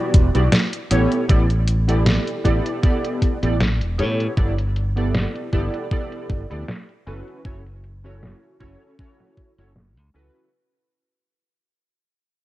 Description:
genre	vaporwave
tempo	78 BPM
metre	4/4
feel	swing 54% on 16ths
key	unclear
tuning	A4 = 441 Hz
part	warbly lo-fi synth keys	accompaniment	0.0-10.5 s	B3 to D5	-24 LUFS	right 1 dB	analog chorus, tape echo
part	modern bright fingered electric bass	bass	0.1-10.3 s	E1 to A2	-21 LUFS	equal	low-pass filter
part	detuned 8-bit digital drum machine	drums	0.1-10.5 s	hi-hat, snare drum	-21 LUFS	equal	overdrive, low-pass filter on hats, low-pass filter on perc, low-pass filter on snare, low-pass filter on toms, low-pass filter on room
part	electronic kick drum	drums	0.1-9.5 s	none	-18 LUFS	equal	none
room	little or no reverb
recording	cassette tape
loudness	-18 LUFS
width	side -16 dB against mid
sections	0.0-10.5 A section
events	fade-out 0.0-10.5; filter sweep on drum 0.0-10.5; filter sweep on fingered electric bass 0.0-10.5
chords	0.0 Em9; 0.9 A9sus4; 4.4 G69; 7.1 F#m7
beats	0.53 | 1.29 2.06 2.83 3.60 | 4.37 5.14 5.91 6.68 | 7.45 8.22 8.99 9.76

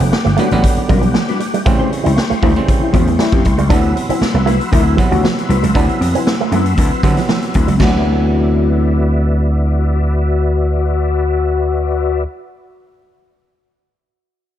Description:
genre	funk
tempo	117 BPM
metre	4/4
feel	straight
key	D mixolydian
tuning	A4 = 440 Hz
part	mellow electric guitar	accompaniment	0.0-12.3 s	F#3 to B#4	-21 LUFS	left 4 dB	wide subtle chorus
part	mellow tonewheel organ	sustained chords	0.0-12.2 s	F#4 to E6	-25 LUFS	left 1 dB	chorus vibrato, slow rotary speaker
part	electric guitar with an envelope filter	riff	0.0-8.0 s	E3 to D4	-21 LUFS	right 10 dB	none
part	clav	stabs	0.0-12.3 s	C3 to B#3	-22 LUFS	right 4 dB	none
part	vintage slap bass	bass	0.0-12.2 s	F1 to D3	-15 LUFS	equal	none
part	raw garage drum kit	drums	0.0-7.9 s	crash cymbal, hi-hat, kick drum, snare drum	-17 LUFS	equal	none
part	breathy trombone	second line	2.0-12.2 s	E4 to F#4	-22 LUFS	left 10 dB	none
room	studio reverb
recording	dark, warm production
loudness	-12 LUFS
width	side -11 dB against mid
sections	0.0-3.7 A section; 3.7-7.8 B section; 7.8-11.9 C section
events	band accent 1.7-3.7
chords	0.0 Em9 (rootless); 1.7 A7#9; 3.7 D13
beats	0.12 0.63 1.15 | 1.66 2.17 2.68 3.19 | 3.70 4.22 4.73 5.24 | 5.75 6.27 6.78 7.29 | 7.80 8.32 8.83 9.34 | 9.86 10.37 10.88 11.39

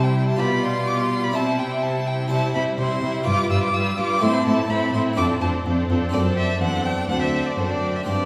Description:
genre	classical, baroque-style concerto movement with solo episodes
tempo	125 BPM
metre	4/4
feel	straight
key	unclear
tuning	A4 = 437 Hz
part	clear chamber violin section	melody	0.0-8.3 s	G4 to D5	-37 LUFS	equal	none
part	clear violin	melody	0.0-8.3 s	C5 to E6	-28 LUFS	equal	none
part	rich chamber violin section	second line	0.0-8.3 s	D4 to F4	-30 LUFS	equal	none
part	harpsichord	accompaniment	0.0-8.3 s	D2 to D5	-31 LUFS	equal	none
part	rich studio viola section	accompaniment	0.0-8.3 s	G3 to C4	-29 LUFS	equal	none
part	clear studio cello section	bass	0.0-8.3 s	D2 to C3	-27 LUFS	equal	none
room	wet concert hall reverb, RT60 2.2 s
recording	heard from further back in the room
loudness	-22 LUFS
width	mono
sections	0.0-8.3 A section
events	none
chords	0.4 G7/B; 1.3 C; 3.3 G7; 4.2 Am; 5.2 Dm7/F; 6.1 D7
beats	| 0.39 0.87 1.35 1.82 | 2.31 2.79 3.26 3.74 | 4.22 4.70 5.18 5.66 | 6.14 6.62 7.10 7.59 | 8.08

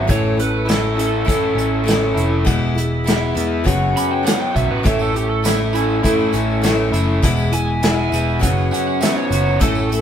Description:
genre	folk rock and heartland rock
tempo	101 BPM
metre	4/4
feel	straight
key	unclear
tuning	A4 = 439 Hz
part	overdriven slide guitar	second line	0.0-10.0 s	E4 to B5	-24 LUFS	right 4 dB	none
part	picked steel-string acoustic guitar	accompaniment	0.0-10.0 s	E2 to A4	-21 LUFS	left 2 dB	none
part	tonewheel organ	sustained chords	0.0-10.0 s	G#4 to C#6	-30 LUFS	equal	slow rotary speaker
part	crunchy overdriven guitar	riff	0.0-10.0 s	E2 to F#4	-23 LUFS	left 1 dB	none
part	picked electric bass	bass	0.0-10.0 s	E1 to E2	-21 LUFS	equal	none
part	unplugged drum kit	drums	0.1-10.0 s	hi-hat, kick drum, snare drum	-20 LUFS	equal	none
part	tambourine	percussion	4.9-10.0 s	none	-37 LUFS	right 3 dB	none
room	moderate stone room reverb, RT60 1.3 s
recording	band playing live in one room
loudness	-15 LUFS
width	side -9 dB against mid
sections	0.0-10.0 A section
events	electric slide guitar solo 0.0-10.0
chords	0.1 A; 2.5 E; 3.7 F#sus4; 4.8 A; 7.2 E; 8.4 F#sus4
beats	| 0.09 0.68 1.27 1.87 | 2.46 3.06 3.65 4.25 | 4.84 5.44 6.03 6.63 | 7.22 7.82 8.42 9.01 | 9.61

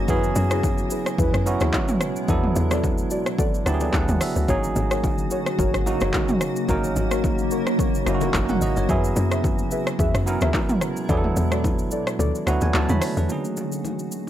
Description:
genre	amapiano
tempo	109 BPM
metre	4/4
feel	swing 55% on 16ths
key	G# minor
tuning	A4 = 439 Hz
part	bell-like tine electric piano	accompaniment	0.0-14.3 s	F#3 to B5	-26 LUFS	right 3 dB	none
part	granular cloud pad	sustained chords	0.0-14.3 s	B2 to A#5	-30 LUFS	left 1 dB	built-in reverb, sidechain pumping
part	woody log drum bass	bass	0.0-13.3 s	F#1 to F#2	-24 LUFS	equal	none
part	deep mellow chord stab	stabs	0.1-12.7 s	E4 to E5	-30 LUFS	left 1 dB	chorus, analog delay
part	deep house drum kit	drums	0.1-14.3 s	handclaps, hi-hat, kick drum, rim click, shaker, toms	-25 LUFS	equal	overdrive
part	congas and bongos	percussion	0.1-14.3 s	none	-33 LUFS	left 3 dB	none
room	little or no reverb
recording	dry, gritty hardware recording, transformer saturation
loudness	-20 LUFS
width	side -12 dB against mid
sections	0.0-13.3 A section; 13.3-14.3 B section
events	drop 0.0-13.3; tine electric piano fill 3.4-4.5, 12.2-13.3; kick muted 12.2-13.3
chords	0.1 F#9sus4; 2.3 E9sus4; 4.5 G#9sus4; 8.9 F#9sus4; 11.1 E9sus4; 13.3 G#9sus4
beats	| 0.08 0.63 1.18 1.73 | 2.29 2.83 3.39 3.94 | 4.49 5.04 5.59 6.14 | 6.69 7.24 7.79 8.34 | 8.89 9.44 9.99 10.54 | 11.09 11.64 12.19 12.74 | 13.29 13.85

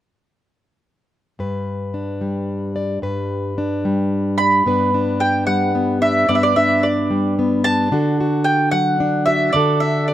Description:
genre	folk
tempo	110 BPM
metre	3/4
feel	straight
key	G major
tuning	A4 = 442 Hz
part	fingerpicked plugged-in steel-string acoustic guitar	accompaniment	1.4-10.1 s	G2 to D5	-18 LUFS	left 1 dB	none
part	mandolin	melody	4.4-10.1 s	D5 to B5	-17 LUFS	right 2 dB	slapback echo
room	little or no reverb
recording	recorded outdoors, with no room sound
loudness	-16 LUFS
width	side -12 dB against mid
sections	1.4-4.7 A section; 4.7-10.1 B section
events	none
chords	1.4 G; 7.9 D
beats	| 1.39 1.93 2.48 | 3.02 3.57 4.11 | 4.66 5.20 5.74 | 6.28 6.83 7.37 | 7.91 8.46 9.00 | 9.54 10.08

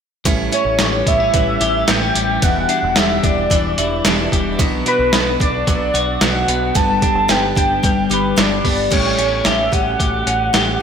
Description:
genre	jangly indie pop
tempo	111 BPM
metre	4/4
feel	straight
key	A mixolydian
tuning	A4 = 443 Hz
part	picked steel-string acoustic guitar	accompaniment	0.2-10.8 s	E2 to G4	-23 LUFS	right 6 dB	none
part	twelve-string electric guitar	arpeggios	0.3-10.8 s	E2 to G4	-22 LUFS	left 6 dB	spring reverb
part	deep dub picked electric bass	bass	0.3-10.8 s	E1 to B1	-24 LUFS	equal	none
part	boom bap sampler-style drum kit	drums	0.3-10.7 s	crash cymbal, hi-hat, kick drum, snare drum	-18 LUFS	equal	none
part	warm velvety synth lead	melody	0.5-10.8 s	B4 to A5	-18 LUFS	equal	chorus
room	moderate lush hall reverb, RT60 2.4 s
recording	big arena sound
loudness	-14 LUFS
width	side -7 dB against mid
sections	0.3-8.9 A section; 8.9-10.8 B section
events	none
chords	0.3 A7; 2.4 Em7; 4.6 Bm; 6.8 G; 8.9 A7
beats	| 0.26 0.80 1.34 1.88 | 2.42 2.96 3.51 4.05 | 4.59 5.13 5.67 6.21 | 6.75 7.30 7.84 8.38 | 8.92 9.46 10.00 10.54

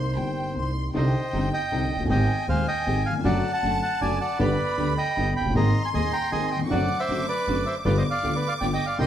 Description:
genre	tango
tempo	157 BPM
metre	3/4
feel	rubato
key	C minor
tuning	A4 = 440 Hz
part	bandoneon	melody	0.0-9.1 s	B4 to C6	-27 LUFS	right 1 dB	slapback echo
part	rich studio violin section	second line	0.0-9.1 s	G5 to D6	-33 LUFS	equal	none
part	warm concert grand piano	accompaniment	0.0-9.1 s	Eb1 to Ab4	-27 LUFS	left 1 dB	none
part	upright bass	bass	0.0-9.1 s	F1 to Eb2	-28 LUFS	right 1 dB	none
part	warm studio string section	stabs	0.9-9.1 s	Ab3 to Bb4	-35 LUFS	equal	none
room	wet club reverb, RT60 0.7 s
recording	heard from further back in the room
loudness	-22 LUFS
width	side -10 dB against mid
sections	0.9-9.1 A section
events	none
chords	0.0 Cm7; 0.9 Cmadd9; 2.1 Abmaj7; 3.2 D/F#; 4.4 G; 5.5 Abadd9; 6.7 D7/F#; 7.8 G7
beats	0.17 0.56 | 0.95 1.33 1.72 | 2.10 2.48 2.87 | 3.25 3.63 4.01 | 4.39 4.78 5.16 | 5.55 5.94 6.32 | 6.70 7.08 7.47 | 7.85 8.23 8.61 | 8.99

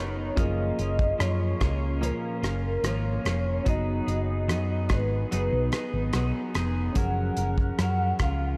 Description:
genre	indie pop, bedroom pop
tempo	73 BPM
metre	4/4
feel	straight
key	unclear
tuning	A4 = 440 Hz
part	warm velvety synth lead	melody	0.0-8.6 s	A#4 to F#5	-35 LUFS	equal	analog chorus, tape echo
part	bright reed electric piano	accompaniment	0.0-8.6 s	E#3 to A#5	-39 LUFS	equal	none
part	twelve-string electric guitar	accompaniment	0.0-8.6 s	A#2 to A#4	-35 LUFS	equal	lush chorus, vibrato effect
part	hollow-body short-scale fingered electric bass	bass	0.0-8.6 s	E#1 to F#2	-30 LUFS	equal	none
part	cloth-damped thuddy drum kit	drums	0.4-8.4 s	hi-hat, kick drum, rim click	-33 LUFS	equal	none
room	moderate cathedral reverb, RT60 4.1 s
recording	dreamy mix soaked in reverb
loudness	-27 LUFS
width	mono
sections	0.0-8.6 A section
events	none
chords	0.4 A#m7/F#; 3.7 G#m7/F#; 7.0 F#maj7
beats	| 0.38 1.20 2.02 2.85 | 3.67 4.49 5.32 6.14 | 6.96 7.79

